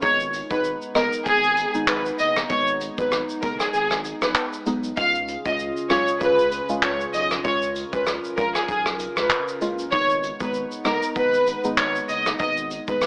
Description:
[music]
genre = dancehall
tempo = 97 BPM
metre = 4/4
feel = swing 56% on 16ths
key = G# dorian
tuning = A4 = 441 Hz
[part]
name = warm studio violin section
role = melody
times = 0.0-13.0 s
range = G#4 to E#5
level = -25 LUFS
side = equal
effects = tape echo
[part]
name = deep mellow chord stab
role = accompaniment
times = 0.0-13.1 s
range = G#3 to E#4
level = -31 LUFS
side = equal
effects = chorus, phaser
[part]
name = hollow soft pad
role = sustained chords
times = 0.0-13.1 s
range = C#3 to A#4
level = -36 LUFS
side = equal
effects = chorus, sidechain pumping
[part]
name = saturated sub bass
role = bass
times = 0.0-13.1 s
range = F#1 to C#2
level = -42 LUFS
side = equal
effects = none
[part]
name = soft brush drum kit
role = drums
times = 0.0-13.1 s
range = handclaps, hi-hat, kick drum, rim click, shaker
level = -29 LUFS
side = equal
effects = none
[sound]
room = light reverb, small room reverb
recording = AM radio sound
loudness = -23 LUFS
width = mono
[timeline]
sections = 0.0-13.1 A section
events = kick muted 3.7-5.0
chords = 0.0 G#m; 5.0 C#; 9.9 G#m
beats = | 0.03 0.64 1.26 1.88 | 2.50 3.12 3.74 4.36 | 4.97 5.59 6.21 6.83 | 7.45 8.07 8.69 9.30 | 9.92 10.54 11.16 11.78 | 12.40 13.02

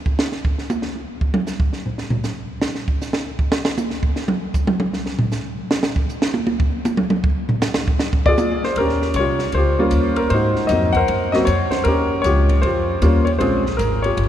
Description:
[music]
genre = jazz piano trio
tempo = 156 BPM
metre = 4/4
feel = swing 65% on 8ths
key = Eb mixolydian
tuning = A4 = 443 Hz
[part]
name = compact cocktail drum kit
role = drums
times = 0.1-14.3 s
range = hi-hat, kick drum, ride cymbal, snare drum, toms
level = -20 LUFS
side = right 1 dB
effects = none
[part]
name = warm concert grand piano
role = melody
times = 8.3-14.3 s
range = Gb3 to Gb5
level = -17 LUFS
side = left 1 dB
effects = none
[part]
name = upright bass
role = bass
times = 8.8-14.3 s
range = G1 to Ab2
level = -19 LUFS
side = equal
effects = none
[sound]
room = wet cathedral reverb, RT60 5.9 s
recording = recorded in a church or concert hall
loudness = -17 LUFS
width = side -10 dB against mid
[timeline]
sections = 0.0-8.8 A section; 8.8-14.3 B section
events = drum solo 0.0-8.8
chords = 0.0 N.C.; 8.0 Fm6; 8.8 Eb9; 10.3 Ab9; 11.9 Eb9; 13.4 Bbm7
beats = 0.32 0.70 | 1.09 1.47 1.86 2.24 | 2.63 3.01 3.39 3.78 | 4.16 4.55 4.93 5.32 | 5.70 6.08 6.47 6.85 | 7.24 7.62 8.01 8.39 | 8.78 9.16 9.55 9.93 | 10.32 10.70 11.09 11.47 | 11.86 12.24 12.63 13.02 | 13.40 13.79 14.17

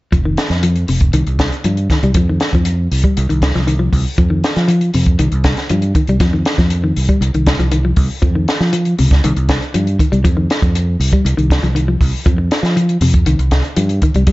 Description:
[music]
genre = afrobeat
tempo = 119 BPM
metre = 4/4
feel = straight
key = unclear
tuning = A4 = 438 Hz
[part]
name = semi-hollow electric guitar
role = arpeggios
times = 0.1-14.3 s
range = C3 to G3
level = -18 LUFS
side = left 2 dB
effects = vibrato effect
[part]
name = fingered electric bass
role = bass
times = 0.1-14.3 s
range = F1 to F3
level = -15 LUFS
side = equal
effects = none
[part]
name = compact cocktail drum kit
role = drums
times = 0.1-14.3 s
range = hi-hat, kick drum, snare drum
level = -16 LUFS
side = equal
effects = none
[sound]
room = light reverb, small room ambience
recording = nothing above 7.7 kHz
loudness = -12 LUFS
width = side -19 dB against mid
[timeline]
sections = 0.1-14.3 A section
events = none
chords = 0.1 F5; 1.1 Cm; 4.2 F5; 5.2 Cm; 8.2 F5; 9.2 Cm; 12.3 F5; 13.3 Cm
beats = | 0.13 0.63 1.14 1.65 | 2.15 2.66 3.16 3.67 | 4.18 4.68 5.19 5.69 | 6.20 6.70 7.21 7.71 | 8.22 8.72 9.23 9.73 | 10.24 10.74 11.25 11.75 | 12.25 12.76 13.26 13.76 | 14.27

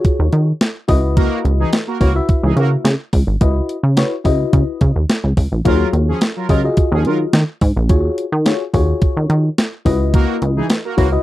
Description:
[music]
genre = early-eighties boogie funk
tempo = 107 BPM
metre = 4/4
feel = straight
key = unclear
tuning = A4 = 440 Hz
[part]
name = mellow FM electric piano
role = accompaniment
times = 0.0-11.2 s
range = Fb4 to Fb5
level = -20 LUFS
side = left 4 dB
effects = chorus, phaser
[part]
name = crisp 8-bit digital drum machine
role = drums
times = 0.0-11.1 s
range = hi-hat, kick drum, snare drum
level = -16 LUFS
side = equal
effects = none
[part]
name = plucky analog bass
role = bass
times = 0.2-11.2 s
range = Ab1 to Eb3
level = -16 LUFS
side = equal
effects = none
[part]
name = analog synth brass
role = second line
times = 1.2-11.1 s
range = Fb3 to Bb4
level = -21 LUFS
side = right 1 dB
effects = chorus
[sound]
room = little or no reverb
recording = dry, close 1970s-style studio recording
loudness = -14 LUFS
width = side -15 dB against mid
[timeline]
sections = 0.0-11.2 A section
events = none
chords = 0.0 Ebm11; 0.9 Dbm11; 5.7 Ebm11; 9.9 Dbm11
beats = 0.05 0.61 | 1.17 1.73 2.29 2.85 | 3.41 3.97 4.53 5.09 | 5.65 6.21 6.78 7.34 | 7.90 8.46 9.02 9.58 | 10.14 10.70

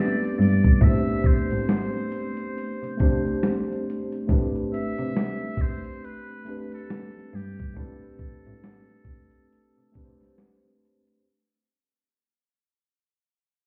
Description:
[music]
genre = lo-fi hip hop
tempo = 69 BPM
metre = 4/4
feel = swing 60% on 16ths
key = A minor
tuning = A4 = 440 Hz
[part]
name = trumpet with metal mute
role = melody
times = 0.0-10.3 s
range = G4 to E5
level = -38 LUFS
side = equal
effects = low-pass filter, analog delay
[part]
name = mellow tine electric piano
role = accompaniment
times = 0.0-11.3 s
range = A3 to C5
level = -31 LUFS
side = equal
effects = low-pass filter
[part]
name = dusty soul sampler-style drum kit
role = drums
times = 0.2-11.2 s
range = hi-hat, kick drum, snare drum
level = -25 LUFS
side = equal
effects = vintage 12-bit sampler grit
[part]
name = rich cello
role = bass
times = 0.4-10.4 s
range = G2 to C3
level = -28 LUFS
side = equal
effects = none
[sound]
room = light reverb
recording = heard muffled through a wall, stone room reverb, EQ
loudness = -24 LUFS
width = mono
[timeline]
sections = 0.0-11.2 A section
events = fade-out 0.0-11.2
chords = 0.0 Am11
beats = | 0.81 1.68 2.55 3.42 | 4.29 5.16 6.03 6.90 | 7.77 8.64 9.51 10.38

